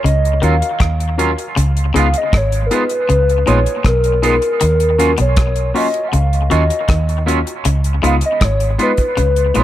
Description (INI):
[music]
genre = lovers rock reggae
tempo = 79 BPM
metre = 4/4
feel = straight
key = Eb minor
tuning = A4 = 442 Hz
[part]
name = hollow clarinet-like synth lead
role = melody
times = 0.0-9.6 s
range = Bb4 to Gb5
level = -18 LUFS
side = left 1 dB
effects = chorus, tape echo
[part]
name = twangy electric guitar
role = riff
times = 0.0-9.6 s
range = Ab2 to Eb3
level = -24 LUFS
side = left 4 dB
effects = dub echo
[part]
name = vintage muted fingered electric bass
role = bass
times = 0.0-9.6 s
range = Ab1 to Eb2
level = -16 LUFS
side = equal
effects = none
[part]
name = damped 70s drum kit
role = drums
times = 0.1-9.6 s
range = hi-hat, kick drum, rim click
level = -19 LUFS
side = equal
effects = none
[part]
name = tine electric piano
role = accompaniment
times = 0.4-9.6 s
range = Ab3 to Bb4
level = -22 LUFS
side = left 5 dB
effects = none
[part]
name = twangy electric guitar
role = stabs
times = 0.4-9.6 s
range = Gb3 to F4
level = -22 LUFS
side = right 6 dB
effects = lush chorus, dub echo
[sound]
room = moderate spring reverb, RT60 2.3 s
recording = none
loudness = -13 LUFS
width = side -13 dB against mid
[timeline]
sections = 0.0-9.6 A section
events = none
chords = 0.0 Ebm9; 1.6 Db7; 4.6 Ebm9; 7.6 Db7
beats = 0.04 0.80 | 1.56 2.33 3.09 3.85 | 4.61 5.37 6.13 6.89 | 7.65 8.41 9.17